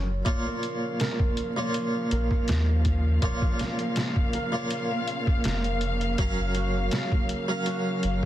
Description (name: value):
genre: trip hop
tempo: 81 BPM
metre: 4/4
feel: swing 53% on 16ths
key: Bb minor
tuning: A4 = 440 Hz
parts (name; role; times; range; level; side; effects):
- harpsichord; accompaniment; 0.0-8.3 s; Bb2 to F5; -30 LUFS; right 1 dB; tremolo, tape echo
- warm sub bass; bass; 0.0-8.2 s; F1 to Eb2; -26 LUFS; equal; none
- muted studio string section; sustained chords; 0.3-8.3 s; Db3 to F5; -32 LUFS; left 2 dB; none
- trip hop sampler-style drum kit; drums; 0.3-8.3 s; hi-hat, kick drum, snare drum; -27 LUFS; equal; small room ambience
- flamenco guitar; arpeggios; 0.5-8.2 s; Bb3 to Bb4; -35 LUFS; right 4 dB; ping-pong delay
room: small room ambience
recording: dense, heavily limited modern master, vinyl crackle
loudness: -24 LUFS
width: side -13 dB against mid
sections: 0.0-8.3 A section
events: break 0.0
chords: 0.3 Bbm; 6.2 Gbmaj7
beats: | 0.26 1.00 1.74 2.48 | 3.22 3.96 4.70 5.44 | 6.18 6.92 7.67